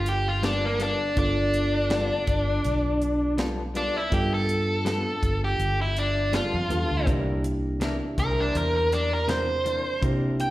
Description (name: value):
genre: straight-eighth soul blues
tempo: 81 BPM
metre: 4/4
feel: swing 55% on 16ths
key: G mixolydian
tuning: A4 = 439 Hz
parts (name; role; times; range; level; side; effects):
- biting overdriven guitar; melody; 0.0-10.5 s; Bb3 to G5; -25 LUFS; equal; slapback echo
- bright reed electric piano; accompaniment; 0.0-10.5 s; Bb3 to A4; -33 LUFS; right 2 dB; slapback echo
- vintage muted fingered electric bass; bass; 0.0-10.5 s; G1 to C3; -28 LUFS; equal; none
- tight funk drum kit; drums; 0.1-10.5 s; hi-hat, kick drum, snare drum; -30 LUFS; equal; none
- direct-recorded clean electric guitar; stabs; 0.4-9.9 s; C3 to A4; -33 LUFS; left 3 dB; tremolo, slapback echo
- clear horn section; sustained chords; 7.1-10.4 s; D4 to C5; -37 LUFS; equal; none
room: light reverb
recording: live gig heard through the venue's PA, recital hall reverb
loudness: -22 LUFS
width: side -16 dB against mid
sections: 0.0-10.5 A section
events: overdriven electric guitar solo 0.0-10.5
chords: 0.0 G9; 7.1 C9